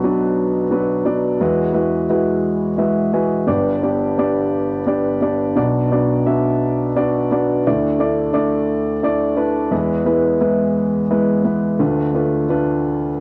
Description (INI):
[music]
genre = folk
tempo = 58 BPM (dotted quarters)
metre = 6/8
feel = straight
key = unclear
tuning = A4 = 438 Hz
[part]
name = dark grand piano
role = solo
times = 0.0-13.2 s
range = G1 to G#5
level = -18 LUFS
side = equal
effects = cassette tape
[sound]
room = moderate booth ambience, RT60 0.3 s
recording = home recording on cassette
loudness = -18 LUFS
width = mono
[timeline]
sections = 0.0-11.8 A section; 11.8-13.2 B section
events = none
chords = 0.0 Bm; 1.4 Eadd9; 3.5 G; 5.6 Bm; 7.6 Dsus2; 9.7 E; 11.8 Dm6